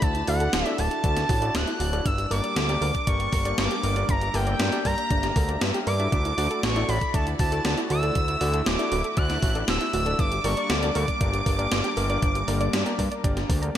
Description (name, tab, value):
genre	synthwave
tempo	118 BPM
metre	4/4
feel	straight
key	unclear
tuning	A4 = 440 Hz
part	expressive portamento lead	melody	0.0-13.7 s	F#5 to F#6	-29 LUFS	right 1 dB	chorus, ping-pong delay
part	string machine, violins	second line	0.0-13.7 s	F#5 to F#6	-37 LUFS	right 1 dB	ensemble chorus, ping-pong delay
part	warm analog pad	sustained chords	0.0-13.8 s	G3 to E5	-34 LUFS	equal	chorus
part	soft round pluck	arpeggios	0.0-13.8 s	D4 to Bb5	-34 LUFS	right 3 dB	chorus, ping-pong delay
part	warm electric grand piano	stabs	0.0-13.8 s	Bb3 to G5	-33 LUFS	left 3 dB	ping-pong delay
part	fat analog bass	bass	0.0-13.8 s	D1 to G2	-27 LUFS	equal	tube saturation, sidechain pumping
part	electronic kick drum	drums	0.0-13.6 s	none	-26 LUFS	equal	none
part	gated 80s digital drum machine	drums	0.0-13.8 s	hi-hat, snare drum	-29 LUFS	equal	gated reverb, gated reverb snare
room	light reverb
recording	none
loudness	-22 LUFS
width	side -10 dB against mid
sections	0.0-13.8 A section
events	none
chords	0.0 Dadd9; 2.1 Gm; 6.1 Dadd9; 10.2 Gm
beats	| 0.02 0.53 1.04 1.55 | 2.06 2.56 3.07 3.58 | 4.09 4.60 5.11 5.61 | 6.12 6.63 7.14 7.65 | 8.16 8.66 9.17 9.68 | 10.19 10.70 11.21 11.72 | 12.22 12.73 13.24 13.75